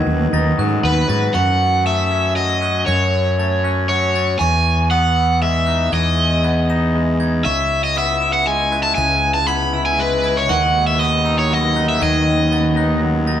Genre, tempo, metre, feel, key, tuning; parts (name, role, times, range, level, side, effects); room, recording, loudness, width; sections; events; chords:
post-rock; 118 BPM; 3/4; straight; A4 = 440 Hz
granular cloud pad; sustained chords; 0.0-1.3, 8.1-13.4 s; C#3 to B4; -28 LUFS; equal
glockenspiel with brass mallets; arpeggios; 0.0-13.4 s; C#6 to E7; -29 LUFS; right 5 dB
twangy electric guitar; arpeggios; 0.0-13.4 s; F#2 to E4; -23 LUFS; left 4 dB; slapback echo
fuzz fingered electric bass; bass; 0.1-13.4 s; C#2 to G#2; -19 LUFS; equal; overdrive
cranked stack guitar; melody; 0.8-13.0 s; B4 to B5; -18 LUFS; equal; overdrive
wet large studio reverb, RT60 1.4 s; band playing live in one room; -14 LUFS; side -10 dB against mid
0.0-1.3 A section; 1.3-13.4 B section
0.0 B7/D#; 1.3 F#madd9; 4.4 Emaj7; 7.5 C#m7; 10.5 B7/D#